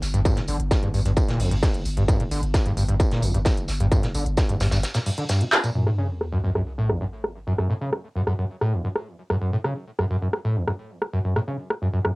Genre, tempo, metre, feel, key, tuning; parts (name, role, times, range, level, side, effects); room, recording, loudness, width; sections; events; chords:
driving peak-time techno; 131 BPM; 4/4; straight; A4 = 441 Hz
saturated sub bass; bass; 0.0-4.8 s; G1; -26 LUFS; equal; overdrive, sidechain pumping, low-pass filter
techno drum kit; drums; 0.0-12.1 s; crash cymbal, handclaps, hi-hat, rim click; -25 LUFS; equal; low-pass filter on hats, low-pass filter on snare, low-pass filter on cymbals
warm soul drum kit; drums; 0.0-5.7 s; hi-hat, snare drum, tambourine; -33 LUFS; equal; high-pass filter on hats, high-pass filter on snare, high-pass filter on perc, high-pass filter on room
overdriven acid bass; riff; 0.1-12.1 s; E2 to D3; -24 LUFS; equal; distortion, wide subtle chorus, sidechain pumping
electronic kick drum; drums; 0.3-4.5 s; -21 LUFS; equal; distortion, overdrive
sub drop; sound effects; 5.8-7.6 s; -28 LUFS; equal
wet booth ambience, RT60 0.2 s; home recording on cassette; -21 LUFS; side -24 dB against mid
0.0-5.8 A section; 5.8-12.2 B section
drum fill 5.5; band accent 5.5; impact 5.8-7.6
0.0 N.C.; 5.8 F#m